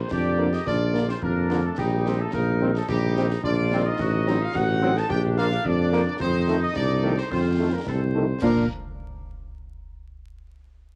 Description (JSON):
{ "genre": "military-style march for wind band", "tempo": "108 BPM", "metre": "2/4", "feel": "straight", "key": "Bb major", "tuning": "A4 = 440 Hz", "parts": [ { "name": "dark trumpet section", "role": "melody", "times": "0.0-8.7 s", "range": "G4 to A5", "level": "-32 LUFS", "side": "equal", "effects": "cassette tape" }, { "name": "warm euphonium", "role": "second line", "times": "0.0-8.7 s", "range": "G3 to A4", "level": "-37 LUFS", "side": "equal", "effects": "cassette tape" }, { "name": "mellow tuba", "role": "bass", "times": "0.0-8.7 s", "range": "A1 to Bb2", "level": "-26 LUFS", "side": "equal", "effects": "none" }, { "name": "warm woodwind section", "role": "second line", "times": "0.1-8.7 s", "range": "D4 to F5", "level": "-37 LUFS", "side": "equal", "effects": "cassette tape" }, { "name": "concert snare drum, concert bass drum and clash cymbals", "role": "drums", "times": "0.1-8.7 s", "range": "none", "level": "-38 LUFS", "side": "equal", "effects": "cassette tape" }, { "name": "dark French horn section", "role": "accompaniment", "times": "0.4-8.7 s", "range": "F3 to F4", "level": "-33 LUFS", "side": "equal", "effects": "none" }, { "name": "clear trombone section", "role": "sustained chords", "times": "0.4-8.7 s", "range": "D3 to D4", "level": "-34 LUFS", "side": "equal", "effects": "cassette tape" } ], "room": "light reverb, small room ambience", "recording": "home recording on cassette, vinyl crackle", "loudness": "-23 LUFS", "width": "mono", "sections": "0.0-8.4 A section; 8.4-9.5 B section", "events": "none", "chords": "0.0 Bb; 1.8 Cm7/Bb; 4.0 Adim7; 5.1 Bb; 6.2 F7; 8.4 Bb" }